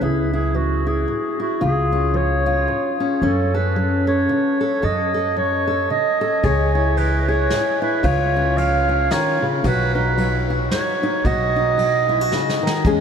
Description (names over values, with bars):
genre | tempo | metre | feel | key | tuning
acoustic folk duo or small band | 112 BPM | 3/4 | swing 58% on 8ths | unclear | A4 = 440 Hz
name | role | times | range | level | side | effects
warm clarinet | second line | 0.0-12.6 s | F#4 to E#5 | -21 LUFS | right 2 dB | ping-pong delay
fingerpicked steel-string acoustic guitar | accompaniment | 0.0-13.0 s | E2 to A4 | -22 LUFS | left 2 dB | none
upright bass | bass | 0.0-13.0 s | B1 to F#2 | -22 LUFS | equal | none
vintage brush drum kit | drums | 6.4-13.0 s | hi-hat, kick drum, ride cymbal, snare drum | -27 LUFS | equal | none
room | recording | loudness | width
wet huge ambient reverb, RT60 7.9 s | dreamy mix soaked in reverb | -17 LUFS | side -7 dB against mid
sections
0.0-12.8 A section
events
clarinet solo 0.0-12.8; drum fill 12.3-12.8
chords
0.0 C#m; 1.6 C#; 3.2 F#m; 6.4 C#m; 8.0 C#; 9.6 B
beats
| 0.02 0.55 1.09 | 1.62 2.16 2.69 | 3.23 3.76 4.30 | 4.83 5.37 5.90 | 6.44 6.97 7.51 | 8.04 8.58 9.11 | 9.64 10.18 10.71 | 11.25 11.78 12.31 | 12.85